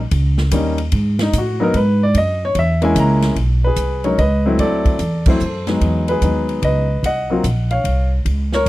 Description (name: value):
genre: jazz piano trio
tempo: 147 BPM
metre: 3/4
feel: swing 66% on 8ths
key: unclear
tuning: A4 = 440 Hz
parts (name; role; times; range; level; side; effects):
- upright bass; bass; 0.0-8.7 s; G#1 to A2; -17 LUFS; equal; none
- swinging big-band drum kit; drums; 0.1-8.7 s; crash cymbal, hi-hat, kick drum, ride cymbal, snare drum; -21 LUFS; equal; none
- warm baby grand piano; melody; 0.5-8.7 s; F#3 to A#5; -18 LUFS; left 1 dB; none
room: little or no reverb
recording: dry, close 1970s-style studio recording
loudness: -14 LUFS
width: side -17 dB against mid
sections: 0.0-3.4 A section; 3.4-8.7 B section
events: grand piano solo 0.0-3.4; band accent 5.2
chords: 0.0 D#7; 0.9 G#m7; 2.1 F#7; 3.4 B6; 4.6 D9; 5.8 Emaj9; 7.0 D#m13